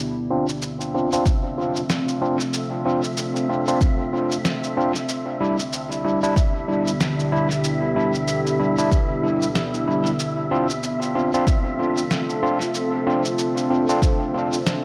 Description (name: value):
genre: ambient dub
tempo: 94 BPM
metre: 4/4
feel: swing 59% on 16ths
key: D dorian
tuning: A4 = 440 Hz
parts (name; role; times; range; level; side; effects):
- deep dark ambient pad; sustained chords; 0.0-14.8 s; D3 to D5; -28 LUFS; equal; chorus, built-in reverb
- wind-like tuned noise texture; texture; 0.7-14.8 s; E5; -35 LUFS; equal; built-in reverb
- overdriven tine electric piano; stabs; 0.3-14.6 s; G3 to F4; -26 LUFS; equal; low-pass filter, dub echo
- electronic cabasa and snare drum; drums; 0.5-14.8 s; none; -31 LUFS; equal; studio reverb, dub echo
- electronic kick drum; drums; 1.3-14.2 s; none; -21 LUFS; equal; overdrive, studio reverb
room: light reverb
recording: echo-heavy mix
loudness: -22 LUFS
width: mono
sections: 0.0-14.8 A section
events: filter sweep on tine electric piano 0.0-14.8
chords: 0.0 Dm7; 5.1 Em7/D; 10.2 Dm7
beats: 0.62 1.26 1.90 | 2.53 3.17 3.81 4.45 | 5.09 5.72 6.36 7.00 | 7.64 8.28 8.92 9.55 | 10.19 10.83 11.47 12.11 | 12.75 13.38 14.02 14.66